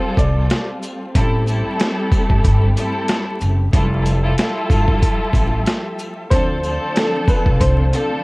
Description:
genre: hip hop, boom-bap hip-hop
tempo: 93 BPM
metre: 4/4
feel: swing 56% on 16ths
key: D minor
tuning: A4 = 442 Hz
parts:
  - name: warm upright piano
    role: melody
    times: 0.0-0.7, 6.3-8.2 s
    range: A4 to D5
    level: -23 LUFS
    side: equal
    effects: high-pass filter, low-pass filter
  - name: warm studio string section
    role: accompaniment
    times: 0.0-8.2 s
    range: F3 to A4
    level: -22 LUFS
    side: equal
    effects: high-pass filter, low-pass filter
  - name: warm studio string section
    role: sustained chords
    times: 0.0-8.2 s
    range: D3 to E5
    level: -30 LUFS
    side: left 1 dB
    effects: high-pass filter, low-pass filter
  - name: upright bass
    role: bass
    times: 0.2-7.9 s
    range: F1 to D2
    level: -18 LUFS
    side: equal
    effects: none
  - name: boom bap sampler-style drum kit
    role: drums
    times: 0.2-8.1 s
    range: hi-hat, kick drum, shaker, snare drum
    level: -18 LUFS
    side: equal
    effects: none
  - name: sleigh bells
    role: percussion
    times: 0.2-8.1 s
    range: none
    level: -41 LUFS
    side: left 3 dB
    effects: none
room: small room ambience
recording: worn, warbling old tape, cassette tape, vinyl crackle, warbly pitch drift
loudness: -15 LUFS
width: side -24 dB against mid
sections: 0.0-8.2 A section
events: none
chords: 0.0 G9sus4; 1.2 Am7; 3.7 Fmaj9; 6.3 Dm7

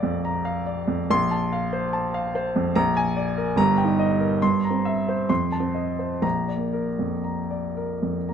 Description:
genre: classical, romantic character piece for solo piano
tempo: 58-74 BPM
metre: 3/4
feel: rubato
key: Bb major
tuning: A4 = 440 Hz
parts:
  - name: warm baby grand piano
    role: solo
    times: 0.0-8.3 s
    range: G1 to D6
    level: -21 LUFS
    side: equal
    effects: none
room: light reverb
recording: close, detailed microphones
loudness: -21 LUFS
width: side -8 dB against mid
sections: 0.0-8.3 A section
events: none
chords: 0.0 Bb; 1.1 F/Bb; 2.7 Bb7; 3.6 Eb/G; 4.4 C7/G; 5.3 F7; 6.2 Bb

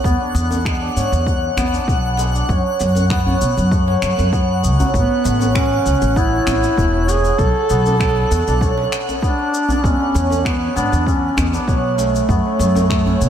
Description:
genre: organic downtempo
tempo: 98 BPM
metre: 4/4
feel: straight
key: unclear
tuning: A4 = 439 Hz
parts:
  - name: santur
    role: arpeggios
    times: 0.0-13.3 s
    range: F#3 to D4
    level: -21 LUFS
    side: right 1 dB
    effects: ping-pong delay
  - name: upright bass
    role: bass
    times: 0.0-13.3 s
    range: E1 to B2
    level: -18 LUFS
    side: equal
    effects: sidechain pumping
  - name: electronic kick drum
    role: drums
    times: 0.0-13.0 s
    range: none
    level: -20 LUFS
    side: equal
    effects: none
  - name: twinkling granular texture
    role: texture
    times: 0.0-13.3 s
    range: F#5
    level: -29 LUFS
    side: left 1 dB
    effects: built-in reverb
  - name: electronic shaker and finger snaps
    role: drums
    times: 0.1-13.3 s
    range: none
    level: -28 LUFS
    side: left 2 dB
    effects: none
  - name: djembe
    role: percussion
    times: 0.3-13.3 s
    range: none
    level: -26 LUFS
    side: equal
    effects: none
  - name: mellow duduk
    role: melody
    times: 5.0-13.3 s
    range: A3 to A4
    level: -19 LUFS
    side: equal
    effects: ping-pong delay
room: moderate lush hall reverb, RT60 2.1 s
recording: dreamy mix soaked in reverb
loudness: -14 LUFS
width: side -9 dB against mid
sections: 0.0-13.3 A section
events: none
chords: 0.0 E; 2.5 F#m; 4.9 Aadd9; 7.4 Bm; 9.8 E; 12.3 F#m

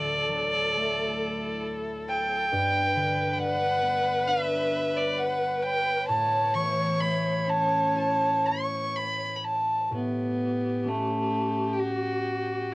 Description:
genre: celtic folk, Celtic slow air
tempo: 60-69 BPM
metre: 4/4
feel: rubato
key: A mixolydian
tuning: A4 = 440 Hz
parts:
  - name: warm fiddle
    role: melody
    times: 0.0-12.7 s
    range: A3 to C#6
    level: -26 LUFS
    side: equal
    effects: cassette tape
  - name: warm viola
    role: second line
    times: 0.0-12.7 s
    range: G4 to C#5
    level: -31 LUFS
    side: left 1 dB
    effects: none
  - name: concert harp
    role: accompaniment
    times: 0.0-12.7 s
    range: D2 to E4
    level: -32 LUFS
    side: equal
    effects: none
  - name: warm chamber string section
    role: sustained chords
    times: 0.0-9.9 s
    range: F#3 to C#5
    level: -41 LUFS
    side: equal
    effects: none
room: light reverb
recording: home recording on cassette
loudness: -24 LUFS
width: side -21 dB against mid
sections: 0.0-9.9 A section; 9.9-12.7 B section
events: none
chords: 0.0 D; 2.5 G; 6.1 Aadd9

